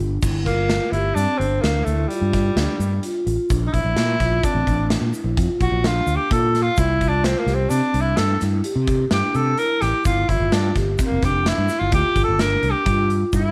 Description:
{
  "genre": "progressive instrumental, band music in an uneven meter",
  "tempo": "128 BPM",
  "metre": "7/4",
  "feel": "straight",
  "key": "G dorian",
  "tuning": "A4 = 441 Hz",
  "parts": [
    { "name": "vibraphone with soft mallets", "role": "arpeggios", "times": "0.0-13.5 s", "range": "C4 to G4", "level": "-28 LUFS", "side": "equal", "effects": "none" },
    { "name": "fretless electric bass", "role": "bass", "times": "0.0-13.5 s", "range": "F1 to C3", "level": "-24 LUFS", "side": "equal", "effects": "none" },
    { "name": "big rock drum kit", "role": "drums", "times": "0.2-13.4 s", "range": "crash cymbal, hi-hat, kick drum, snare drum", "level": "-27 LUFS", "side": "equal", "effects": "none" },
    { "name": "egg shaker", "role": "percussion", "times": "0.2-13.5 s", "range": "none", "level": "-42 LUFS", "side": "equal", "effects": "none" },
    { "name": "warm tenor saxophone", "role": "melody", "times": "0.5-13.5 s", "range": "G3 to Bb4", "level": "-25 LUFS", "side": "equal", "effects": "none" }
  ],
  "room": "light reverb, studio reverb",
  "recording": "none",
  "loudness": "-20 LUFS",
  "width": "mono",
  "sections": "0.2-13.3 A section",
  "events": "tenor saxophone solo 0.2-13.3",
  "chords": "0.2 Gm7; 3.5 Bb; 6.8 Cadd9; 10.1 G5"
}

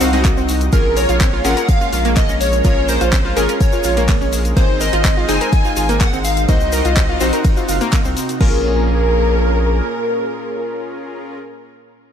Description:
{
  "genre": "progressive house",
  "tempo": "125 BPM",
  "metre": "4/4",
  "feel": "straight",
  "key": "Bb minor",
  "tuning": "A4 = 441 Hz",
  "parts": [
    { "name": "plucky unison lead", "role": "melody", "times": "0.0-11.4 s", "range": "Bb4 to Ab5", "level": "-22 LUFS", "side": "equal", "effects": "wide subtle chorus, digital delay" },
    { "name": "rich studio violin section", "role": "second line", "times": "0.0-11.4 s", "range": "Bb4 to Ab5", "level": "-27 LUFS", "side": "equal", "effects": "sidechain pumping, digital delay" },
    { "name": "lush unison pad", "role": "sustained chords", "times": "0.0-11.4 s", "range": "Bb2 to Ab4", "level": "-25 LUFS", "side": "equal", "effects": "chorus, sidechain pumping" },
    { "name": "analog pluck", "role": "arpeggios", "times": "0.0-8.6 s", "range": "Ab3 to Bb4", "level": "-23 LUFS", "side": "right 1 dB", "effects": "chorus, sidechain pumping, digital delay" },
    { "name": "supersaw stab", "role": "stabs", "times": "0.0-11.4 s", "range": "C4 to F5", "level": "-23 LUFS", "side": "left 2 dB", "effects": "sidechain pumping, digital delay" },
    { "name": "saturated sub bass", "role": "bass", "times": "0.0-9.8 s", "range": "Gb1 to C2", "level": "-19 LUFS", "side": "equal", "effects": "sidechain pumping" },
    { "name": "deep house drum kit", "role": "drums", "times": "0.0-8.5 s", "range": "crash cymbal, handclaps, hi-hat, ride cymbal", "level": "-26 LUFS", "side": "equal", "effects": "none" },
    { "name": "egg shaker", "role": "percussion", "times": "0.0-8.4 s", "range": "none", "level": "-30 LUFS", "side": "left 5 dB", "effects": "none" },
    { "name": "electronic kick drum", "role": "drums", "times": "0.2-8.5 s", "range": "none", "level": "-15 LUFS", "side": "equal", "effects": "none" }
  ],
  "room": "little or no reverb",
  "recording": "none",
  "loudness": "-13 LUFS",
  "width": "side -8 dB against mid",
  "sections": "0.0-8.4 A section; 8.4-12.1 B section",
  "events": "drop 0.0-8.4",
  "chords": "0.0 Cdim; 0.7 Bbm7; 4.6 Ab; 6.5 Cdim; 8.4 Bbm7"
}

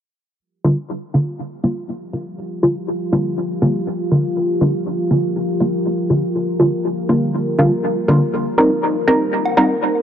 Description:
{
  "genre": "dub techno",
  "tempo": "121 BPM",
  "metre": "4/4",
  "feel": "straight",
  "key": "G minor",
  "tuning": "A4 = 440 Hz",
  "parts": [
    { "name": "deep dark ambient pad", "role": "sustained chords", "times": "2.0-10.0 s", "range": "Eb4 to C5", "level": "-21 LUFS", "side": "left 1 dB", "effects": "chorus, built-in reverb" },
    { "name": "filtered dub chord stab", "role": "stabs", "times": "0.6-9.8 s", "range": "D3 to Bb4", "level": "-16 LUFS", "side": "equal", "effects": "chorus, phaser, dub echo" },
    { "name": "woodblock", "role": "percussion", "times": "9.5-9.7 s", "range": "none", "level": "-23 LUFS", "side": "equal", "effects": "dub echo" }
  ],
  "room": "little or no reverb",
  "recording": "dry, gritty hardware recording",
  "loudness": "-16 LUFS",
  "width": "side -9 dB against mid",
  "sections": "0.4-10.0 A section",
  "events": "filter sweep on synth stab 0.4-10.0",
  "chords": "0.4 Gm7; 8.3 Cm7"
}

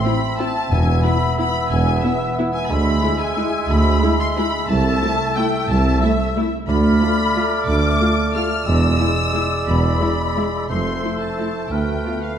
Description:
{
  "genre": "classical, orchestral ballroom waltz",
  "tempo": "180 BPM",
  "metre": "3/4",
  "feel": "uneven beats, rubato",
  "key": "unclear",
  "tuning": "A4 = 440 Hz",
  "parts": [
    { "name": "rich studio violin section", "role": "melody", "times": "0.0-12.4 s", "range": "E5 to F6", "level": "-26 LUFS", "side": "left 3 dB", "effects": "none" },
    { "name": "rich studio violin section", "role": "second line", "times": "0.0-12.4 s", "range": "E5 to F6", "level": "-29 LUFS", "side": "left 3 dB", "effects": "none" },
    { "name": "small flute group", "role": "second line", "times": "0.0-12.4 s", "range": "E6 to F6", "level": "-29 LUFS", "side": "left 3 dB", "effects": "none" },
    { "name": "warm oboe", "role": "second line", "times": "0.0-12.4 s", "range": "B4 to E5", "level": "-29 LUFS", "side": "right 1 dB", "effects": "none" },
    { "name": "rich studio viola section", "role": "accompaniment", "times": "0.0-12.1 s", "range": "G#3 to F4", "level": "-27 LUFS", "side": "right 1 dB", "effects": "none" },
    { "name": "warm bassoon", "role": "accompaniment", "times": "0.0-12.4 s", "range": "G#3 to C4", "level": "-27 LUFS", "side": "right 1 dB", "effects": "none" },
    { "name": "dark French horn section", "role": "sustained chords", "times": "0.0-12.2 s", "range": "G#3 to F4", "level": "-29 LUFS", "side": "left 5 dB", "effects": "none" },
    { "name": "dark studio cello section", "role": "bass", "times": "0.7-12.0 s", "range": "C2 to F2", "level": "-24 LUFS", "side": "right 2 dB", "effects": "none" },
    { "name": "mellow tuba", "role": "bass", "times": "0.7-12.0 s", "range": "E1 to D2", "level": "-25 LUFS", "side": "right 3 dB", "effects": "none" },
    { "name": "warm studio double bass section", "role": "bass", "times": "0.7-12.0 s", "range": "E1 to D2", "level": "-23 LUFS", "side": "right 2 dB", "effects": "none" },
    { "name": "timpani", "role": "percussion", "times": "0.7-1.2 s", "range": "E2", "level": "-22 LUFS", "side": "left 1 dB", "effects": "none" }
  ],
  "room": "moderate scoring stage reverb, RT60 1.6 s",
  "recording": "dark, warm production",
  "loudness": "-16 LUFS",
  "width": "side -8 dB against mid",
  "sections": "0.0-12.4 A section",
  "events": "none",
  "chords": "0.0 Am; 0.7 E; 2.7 E7/D; 4.7 Am/C; 6.7 Bm7b5/D; 8.7 E7; 10.7 Fmaj7; 11.7 Bm7b5/D"
}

